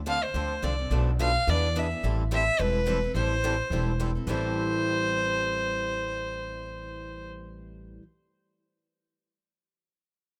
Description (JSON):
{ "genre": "acoustic string swing (jazz manouche)", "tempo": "214 BPM", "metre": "4/4", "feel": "swing 58% on 8ths", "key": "A minor", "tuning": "A4 = 438 Hz", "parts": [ { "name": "upright bass", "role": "bass", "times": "0.0-8.0 s", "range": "E1 to E2", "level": "-32 LUFS", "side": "equal", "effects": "none" }, { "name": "warm violin", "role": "melody", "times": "0.1-7.3 s", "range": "B4 to F5", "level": "-31 LUFS", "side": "equal", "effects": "none" }, { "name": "picked steel-string acoustic guitar", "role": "accompaniment", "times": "0.1-8.0 s", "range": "A2 to A4", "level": "-38 LUFS", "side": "equal", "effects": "none" }, { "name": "picked swing-style acoustic guitar", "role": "accompaniment", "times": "0.1-8.0 s", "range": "A2 to B4", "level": "-39 LUFS", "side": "equal", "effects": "none" } ], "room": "small room ambience", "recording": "rough home demo mix", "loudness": "-27 LUFS", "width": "mono", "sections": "0.0-4.3 A section; 4.3-6.5 B section", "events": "none", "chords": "0.0 Dm7; 0.9 Bm7b5; 1.5 E7; 2.0 Am7", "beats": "0.07 0.35 0.63 | 0.91 1.19 1.47 1.75 | 2.03 2.31 2.59 2.87 | 3.15 3.43 3.71 3.99 | 4.27 4.55 4.83 5.11 | 5.39 5.67 5.96 6.24" }